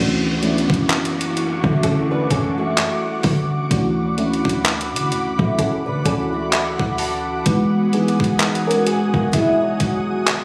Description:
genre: contemporary R&B.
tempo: 64 BPM.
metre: 4/4.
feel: swing 58% on 16ths.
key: D major.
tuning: A4 = 440 Hz.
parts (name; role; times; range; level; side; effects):
FM electric piano with soft pad layer; accompaniment; 0.0-10.4 s; E3 to A5; -24 LUFS; equal; chorus.
ethereal airy pad; sustained chords; 0.3-10.4 s; F#4 to D#6; -29 LUFS; equal; ensemble chorus, built-in reverb.
warm 808-style bass; bass; 0.0-10.4 s; D#1 to D3; -29 LUFS; equal; none.
downlifter; sound effects; 0.1-7.5 s; none; -34 LUFS; equal; none.
detuned 8-bit digital drum machine; drums; 0.4-10.4 s; handclaps, hi-hat, kick drum; -24 LUFS; equal; none.
flamenco guitar; arpeggios; 1.6-10.4 s; F#3 to B4; -24 LUFS; equal; delay.
room: light reverb.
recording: recorded on a phone in the room, studio reverb.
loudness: -19 LUFS.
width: mono.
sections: 0.0-10.4 A section.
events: FM electric piano fill 5.6-7.5.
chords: 0.0 Dmaj9; 7.5 Emaj9.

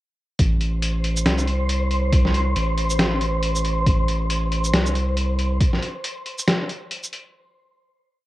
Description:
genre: deep dubstep.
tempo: 138 BPM.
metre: 4/4.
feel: swing 57% on 16ths, half-time.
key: A minor.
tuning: A4 = 440 Hz.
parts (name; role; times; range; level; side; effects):
soft dub sub bass; bass; 0.4-5.6 s; A1 to C2; -22 LUFS; equal; none.
electronic kick drum; drums; 0.4-5.7 s; none; -19 LUFS; equal; cassette tape.
trip hop sampler-style drum kit; drums; 0.4-7.2 s; hi-hat, shaker, snare drum; -24 LUFS; equal; cassette tape.
wind-like tuned noise texture; texture; 0.8-5.6 s; C5; -28 LUFS; equal; built-in reverb, cassette tape.
room: light reverb.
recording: home recording on cassette.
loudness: -19 LUFS.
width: side -16 dB against mid.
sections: 0.4-7.3 drop.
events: drop 0.4-7.3.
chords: 0.4 Am.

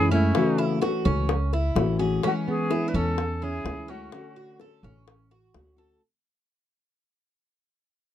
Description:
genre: latin, Cuban son and guajira.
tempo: 127 BPM.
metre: 4/4.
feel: straight.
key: A major.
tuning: A4 = 442 Hz.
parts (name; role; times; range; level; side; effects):
silver concert flute; melody; 0.0-4.6 s; E4 to B4; -29 LUFS; equal; none.
nylon-string guitar; second line; 0.0-4.6 s; A3 to D4; -31 LUFS; right 4 dB; none.
nylon-string guitar; accompaniment; 0.0-6.0 s; C#3 to F#4; -27 LUFS; left 4 dB; none.
Cuban tres; arpeggios; 0.0-6.0 s; C#4 to A4; -31 LUFS; right 4 dB; none.
upright bass; bass; 0.0-6.0 s; A1 to F#2; -25 LUFS; equal; none.
bongos; percussion; 0.3-6.0 s; none; -30 LUFS; left 5 dB; none.
room: light reverb.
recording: dark, warm production.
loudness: -22 LUFS.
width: side -11 dB against mid.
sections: 0.0-6.0 A section.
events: fade-out 0.0-6.0.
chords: 0.0 Amaj7; 4.1 Dmaj7.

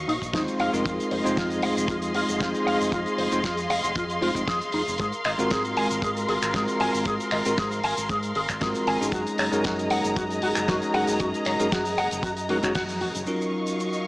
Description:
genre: nu-disco, nu disco.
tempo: 116 BPM.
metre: 4/4.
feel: swing 53% on 16ths.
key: unclear.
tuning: A4 = 441 Hz.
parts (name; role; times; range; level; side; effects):
dark symphonic string section; sustained chords; 0.0-14.1 s; Gb3 to Db6; -28 LUFS; equal; sidechain pumping.
fingered electric bass with an envelope filter; bass; 0.0-13.2 s; F1 to Ab2; -34 LUFS; equal; none.
electric guitar with an envelope filter; riff; 0.1-13.1 s; Eb4 to Ab5; -29 LUFS; equal; lush chorus, tape echo.
damped 70s drum kit; drums; 0.1-14.0 s; finger snaps, hi-hat, shaker, snare drum; -32 LUFS; equal; studio reverb.
kick drum; drums; 0.2-12.9 s; none; -32 LUFS; equal; studio reverb.
bell-like tine electric piano; accompaniment; 0.3-14.1 s; Gb3 to Eb5; -27 LUFS; equal; medium stereo tremolo, sidechain pumping, tape echo.
room: wet lush hall reverb, RT60 1.8 s.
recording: dreamy mix soaked in reverb, small speaker sound.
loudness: -23 LUFS.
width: side -21 dB against mid.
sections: 0.0-13.3 A section.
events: band accent 12.8.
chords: 0.0 Ebm9; 0.6 Fm7; 5.0 Ab13; 9.1 Gb69; 13.3 Ebm9.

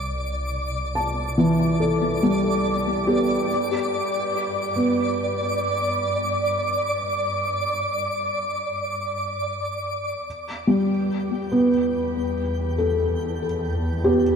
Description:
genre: ambient.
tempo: 71 BPM.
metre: 4/4.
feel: straight.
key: unclear.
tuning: A4 = 438 Hz.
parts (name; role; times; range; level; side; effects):
dark studio double bass section; bass; 0.0-14.4 s; C2 to G2; -31 LUFS; equal; none.
twinkling granular texture; texture; 0.0-14.4 s; D5 to G6; -26 LUFS; equal; built-in reverb.
felt-muted upright piano; arpeggios; 1.0-14.4 s; E3 to A5; -22 LUFS; equal; ping-pong delay.
room: wet shimmer reverb, RT60 7.7 s.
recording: none.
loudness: -21 LUFS.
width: side -6 dB against mid.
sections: 0.0-10.3 A section; 10.3-14.4 B section.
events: fade-out on double bass section 0.0-10.3.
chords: 0.0 C; 3.5 G; 10.3 Em.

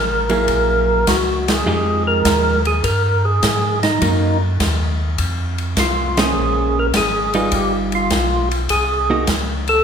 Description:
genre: soul jazz organ trio.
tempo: 102 BPM.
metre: 4/4.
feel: swing 69% on 8ths.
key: unclear.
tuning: A4 = 441 Hz.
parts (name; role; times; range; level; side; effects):
percussive tonewheel organ; melody; 0.0-9.8 s; Eb4 to Bb4; -18 LUFS; equal; slow rotary speaker, overdrive.
tonewheel organ; bass; 0.0-9.8 s; G1 to Ab2; -21 LUFS; equal; chorus vibrato, slow rotary speaker.
hollow-body jazz guitar; accompaniment; 0.3-9.3 s; F3 to C5; -22 LUFS; right 2 dB; none.
swinging big-band drum kit; drums; 0.3-9.8 s; hi-hat, kick drum, ride cymbal, snare drum; -21 LUFS; left 1 dB; none.
room: moderate recital hall reverb, RT60 1.3 s.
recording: recorded in a church or concert hall.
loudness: -15 LUFS.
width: side -7 dB against mid.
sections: 0.0-9.8 A section.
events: band accent 1.4, 6.1.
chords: 0.5 Gb9; 1.7 Fm9; 4.0 Ebm; 5.2 F5; 6.4 Bbm9; 7.5 Gaug7; 8.7 Cm7b5.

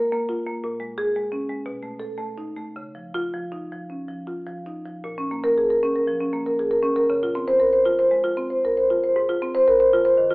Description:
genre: classical, contemporary piece for solo marimba.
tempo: 102-120 BPM.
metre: 4/4.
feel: rubato.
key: Db major, Bb minor from 5.0 s.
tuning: A4 = 440 Hz.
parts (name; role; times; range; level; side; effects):
marimba with medium mallets; solo; 0.0-10.3 s; Ab2 to C5; -20 LUFS; equal; none.
room: wet stone room reverb, RT60 1.0 s.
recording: heard from further back in the room, telephone sound.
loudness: -19 LUFS.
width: side -27 dB against mid.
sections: 0.0-5.0 A section; 5.0-10.3 B section.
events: none.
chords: 0.0 Db6 (rootless); 0.7 Bbm7; 1.7 Cb7; 2.8 Dbadd9; 5.0 Bbm; 7.1 Dbmaj7; 9.2 Ab6.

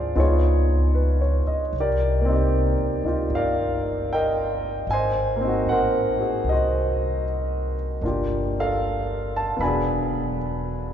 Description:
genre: jazz ballad.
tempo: 76 BPM.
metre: 4/4.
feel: swing 66% on 8ths.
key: unclear.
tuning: A4 = 440 Hz.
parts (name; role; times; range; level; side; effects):
clear upright piano; accompaniment; 0.0-10.9 s; F#3 to B5; -23 LUFS; equal; none.
upright bass; bass; 0.0-10.9 s; E1 to Ab2; -24 LUFS; equal; none.
room: wet cathedral reverb, RT60 5.1 s.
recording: recorded in a church or concert hall, nothing above 7.6 kHz.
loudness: -20 LUFS.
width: side -9 dB against mid.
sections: 0.0-10.9 A section.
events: none.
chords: 0.2 C#9; 1.7 Cm9; 4.9 Ab9; 8.0 Gm9; 9.6 E7.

